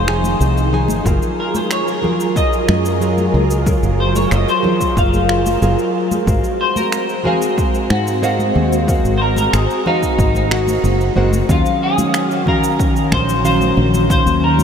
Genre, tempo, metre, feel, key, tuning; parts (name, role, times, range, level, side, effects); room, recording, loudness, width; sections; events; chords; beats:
sunset chillout; 92 BPM; 4/4; straight; Eb dorian; A4 = 440 Hz
clean electric guitar; melody; 0.0-14.6 s; Eb4 to F5; -20 LUFS; left 1 dB; analog chorus, ping-pong delay
nylon-string guitar; accompaniment; 0.0-14.6 s; Eb3 to Ab5; -20 LUFS; equal; auto-pan, ping-pong delay
soft string machine; sustained chords; 0.0-14.6 s; C3 to F5; -21 LUFS; equal; phaser, ensemble chorus
fingered electric bass; bass; 0.0-14.6 s; F1 to Ab2; -17 LUFS; equal
electronic finger snaps and shaker; drums; 0.1-14.6 s; -28 LUFS; right 1 dB; overdrive
congas; percussion; 0.2-14.6 s; -27 LUFS; left 2 dB
electronic kick drum; drums; 1.1-14.2 s; -19 LUFS; equal; overdrive
wet huge ambient reverb, RT60 8.0 s; dreamy mix soaked in reverb; -13 LUFS; side -7 dB against mid
0.0-11.5 A section; 11.5-14.6 B section
0.0 Fm7; 1.1 Gbmaj9; 6.3 Ab13; 11.5 Ebm9
0.40 | 1.05 1.71 2.36 3.01 | 3.66 4.32 4.97 5.62 | 6.27 6.92 7.58 8.23 | 8.88 9.53 10.19 10.84 | 11.49 12.14 12.79 13.45 | 14.10